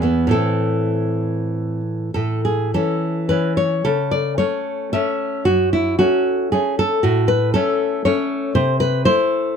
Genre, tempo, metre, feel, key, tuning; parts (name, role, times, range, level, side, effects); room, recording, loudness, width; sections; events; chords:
romantic piece for solo classical guitar; 95-120 BPM; 3/4; rubato; A major; A4 = 440 Hz
nylon-string guitar; solo; 0.0-9.6 s; E2 to E5; -17 LUFS; equal
light reverb; close, detailed microphones; -17 LUFS; side -7 dB against mid
0.0-2.2 A section; 2.2-9.6 B section
0.3 Am; 2.2 A; 3.9 A/C#; 5.5 F#m; 7.0 A69; 8.6 Am/C